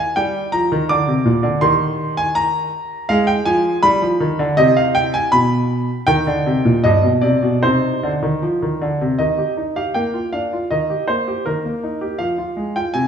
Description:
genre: classical-period piano sonatina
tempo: 80 BPM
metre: 2/4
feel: rubato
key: C minor, Eb major from 9.2 s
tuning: A4 = 439 Hz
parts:
  - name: clear grand piano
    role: solo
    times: 0.0-13.1 s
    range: G2 to D6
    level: -15 LUFS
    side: equal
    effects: none
room: moderate scoring stage reverb, RT60 1.9 s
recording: recorded in a church or concert hall, small room ambience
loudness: -15 LUFS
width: side -7 dB against mid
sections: 0.0-9.2 A section; 9.2-13.1 B section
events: none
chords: 0.2 Eb/G; 0.9 Bb; 1.6 Eb; 3.1 Fm/Ab; 3.8 G7; 4.6 C5; 5.3 N.C.; 6.1 Cm; 6.9 G; 7.6 Cm; 9.2 Eb; 10.0 Bb; 10.7 Eb; 12.2 Fm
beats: | 0.16 0.89 | 1.62 2.36 | 3.09 3.84 | 4.58 5.33 | 6.08 6.86 | 7.64 8.43 | 9.21 9.96 | 10.71 11.46 | 12.20 12.95

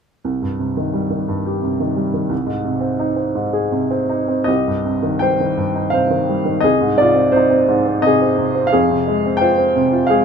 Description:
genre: classical, lyrical solo piano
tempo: 85 BPM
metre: 3/4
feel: uneven beats, rubato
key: C minor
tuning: A4 = 440 Hz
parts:
  - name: clear upright piano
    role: solo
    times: 0.2-10.2 s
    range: C2 to G5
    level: -15 LUFS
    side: equal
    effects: none
room: light reverb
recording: minimal, uncompressed stereo recording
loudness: -15 LUFS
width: side -6 dB against mid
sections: 0.2-4.5 A section; 4.5-10.2 B section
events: none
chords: 0.2 Cm; 2.3 Ab/C; 4.5 Cm; 6.6 Ab/C; 8.7 Fm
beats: | 0.24 0.96 1.64 | 2.32 3.01 3.73 | 4.48 5.22 5.94 | 6.65 7.35 8.05 | 8.73 9.41 10.10

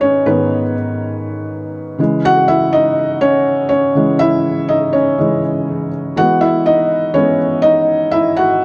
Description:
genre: pop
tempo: 122 BPM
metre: 4/4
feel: swing 56% on 16ths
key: unclear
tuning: A4 = 442 Hz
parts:
  - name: felt-muted upright piano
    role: solo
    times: 0.0-8.6 s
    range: G#2 to F#5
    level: -15 LUFS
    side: equal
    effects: tape echo
room: moderate plate reverb, RT60 3.7 s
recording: dark, warm production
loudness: -15 LUFS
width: mono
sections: 0.0-8.6 A section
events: felt piano solo 0.0-8.6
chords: 0.0 G#m; 2.0 C#m; 6.2 E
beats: | 0.27 0.76 1.25 1.74 | 2.23 2.72 3.22 3.71 | 4.20 4.69 5.18 5.67 | 6.17 6.66 7.15 7.64 | 8.13 8.63

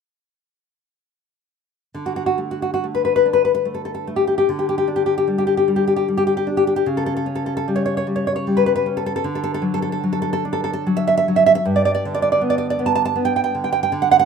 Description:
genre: romantic piece for solo classical guitar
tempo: 65-80 BPM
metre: 3/4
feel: rubato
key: D major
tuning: A4 = 440 Hz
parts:
  - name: nylon-string guitar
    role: solo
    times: 1.9-14.3 s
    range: G2 to A5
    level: -17 LUFS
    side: equal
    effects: none
room: small room ambience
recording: rough home demo mix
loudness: -17 LUFS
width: side -6 dB against mid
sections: 2.0-14.3 A section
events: none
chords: 2.0 D5; 4.5 Dsus4; 6.9 A7/C#; 9.2 D; 11.6 G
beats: | 1.96 2.85 3.68 | 4.48 5.27 6.07 | 6.86 7.65 8.45 | 9.25 10.02 10.85 | 11.63 12.41 13.17 | 13.93

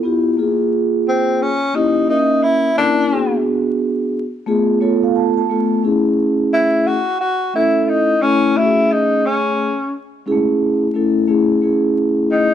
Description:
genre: hip hop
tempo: 88 BPM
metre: 4/4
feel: swing 64% on 16ths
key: unclear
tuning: A4 = 440 Hz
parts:
  - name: vibraphone with soft mallets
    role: accompaniment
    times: 0.0-12.5 s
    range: G#3 to A5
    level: -15 LUFS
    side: moving between left 4 dB and right 4 dB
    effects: auto-pan
  - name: breathy tenor saxophone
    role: melody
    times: 1.1-12.5 s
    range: B#3 to F#4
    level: -16 LUFS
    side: left 1 dB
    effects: none
room: moderate echo chamber reverb, RT60 1.6 s, studio ambience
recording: dark, warm production, vinyl crackle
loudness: -14 LUFS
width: side -10 dB against mid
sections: 0.0-11.3 A section; 11.3-12.5 B section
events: vibraphone fill 4.5-5.8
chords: 0.4 A#m9; 1.7 A#dim7; 3.1 G#m7b5; 4.5 C#7b13/A; 5.8 F#m9 (rootless)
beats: | 0.38 1.06 1.75 2.43 | 3.11 3.79 4.47 5.15 | 5.84 6.52 7.20 7.88 | 8.56 9.24 9.93 10.61 | 11.29 11.97

